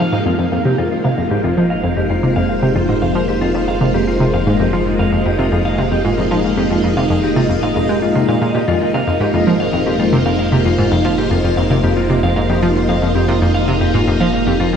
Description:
ambient, sequencer-driven space music; 114 BPM; 4/4; straight; F minor; A4 = 440 Hz
string machine, full ensemble; sustained chords; 0.0-14.8 s; Ab3 to Eb5; -18 LUFS; equal; phaser, ensemble chorus
clean electric guitar; arpeggios; 0.0-14.8 s; F4 to F5; -21 LUFS; equal; auto-pan, low-pass filter, ping-pong delay
analog pluck; riff; 0.0-14.8 s; F2 to Ab3; -17 LUFS; equal; chorus, ping-pong delay
fat analog bass; bass; 0.0-14.8 s; F1; -23 LUFS; equal
wet huge ambient reverb, RT60 8.2 s; dark, warm production; -13 LUFS; side -7 dB against mid
0.3-14.8 A section
0.0 Fmadd9
| 0.26 0.78 1.31 1.84 | 2.36 2.89 3.42 3.94 | 4.47 5.00 5.52 6.05 | 6.57 7.10 7.63 8.15 | 8.68 9.21 9.73 10.26 | 10.78 11.31 11.84 12.36 | 12.89 13.42 13.94 14.47

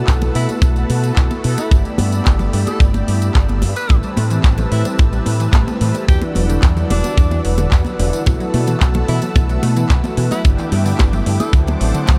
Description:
nu-disco, nu disco; 110 BPM; 4/4; straight; A4 = 439 Hz
mellow synth brass; accompaniment; 0.0-12.2 s; F#3 to B4; -26 LUFS; equal; chorus, phaser, sidechain pumping, tape echo
lush unison pad; sustained chords; 0.0-12.2 s; C4 to E6; -31 LUFS; equal; chorus, sidechain pumping
fingered electric bass with an envelope filter; bass; 0.1-12.2 s; E1 to B2; -20 LUFS; equal; tube saturation
kick drum; drums; 0.1-12.2 s; -16 LUFS; equal
pop drum kit; drums; 0.1-12.2 s; handclaps, hi-hat; -31 LUFS; equal
tambourine and congas; percussion; 0.1-12.2 s; -29 LUFS; equal
breathy tenor saxophone; melody; 0.4-11.5 s; D4 to B4; -32 LUFS; equal
analog pluck; arpeggios; 3.9-12.1 s; D3 to A3; -27 LUFS; equal; chorus, sidechain pumping, tape echo
light reverb, studio reverb; -16 LUFS; mono
0.0-12.2 A section
0.0 B7sus4; 1.7 G6; 3.9 Am7; 6.1 Em9; 8.3 B7sus4; 10.4 G6; 11.5 D7
0.08 0.63 1.17 | 1.72 2.26 2.81 3.35 | 3.90 4.45 4.99 5.54 | 6.08 6.63 7.17 7.72 | 8.26 8.81 9.35 9.90 | 10.45 10.99 11.54 12.08

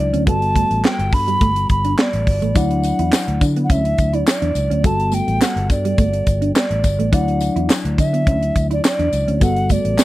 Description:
early-eighties boogie funk; 105 BPM; 4/4; straight; D major; A4 = 437 Hz
breathy alto ocarina; melody; 0.0-10.0 s; D5 to B5; -21 LUFS; right 1 dB
tine electric piano; accompaniment; 0.0-10.0 s; F#3 to D5; -24 LUFS; left 3 dB
vintage muted fingered electric bass; bass; 0.0-10.0 s; G1 to D3; -20 LUFS; equal
mellow electric guitar; riff; 0.1-10.0 s; G3 to E4; -24 LUFS; right 4 dB; analog chorus
tight funk drum kit; drums; 0.1-10.0 s; handclaps, hi-hat, kick drum, snare drum; -17 LUFS; equal
tambourine; percussion; 2.6-10.0 s; -32 LUFS; left 22 dB
little or no reverb; dry, close 1970s-style studio recording; -15 LUFS; side -16 dB against mid
0.0-10.0 A section
0.3 Gmaj9; 2.6 Dmaj9; 4.8 Gmaj9; 7.1 Dmaj9; 9.4 Gmaj9
| 0.27 0.84 1.41 1.98 | 2.56 3.13 3.70 4.27 | 4.84 5.41 5.98 6.55 | 7.13 7.70 8.27 8.84 | 9.41 9.98

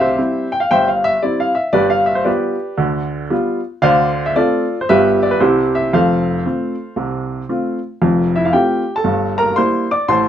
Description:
jazz, stride piano; 115 BPM; 4/4; swing 66% on 8ths; F major from 3.8 s; A4 = 438 Hz
warm upright piano; solo; 0.0-10.3 s; F1 to D6; -14 LUFS; equal
moderate studio reverb, RT60 0.5 s; dark, warm production; -14 LUFS; side -10 dB against mid
0.0-8.0 A section; 8.0-10.3 B section
0.0 C; 1.7 G7; 2.8 G7/D; 3.8 Dm7; 4.9 G7; 5.4 C; 5.9 F; 9.1 Edim/G
0.17 0.70 1.22 | 1.74 2.27 2.79 3.31 | 3.83 4.35 4.88 5.40 | 5.92 6.44 6.96 7.49 | 8.01 8.53 9.05 9.57 | 10.09

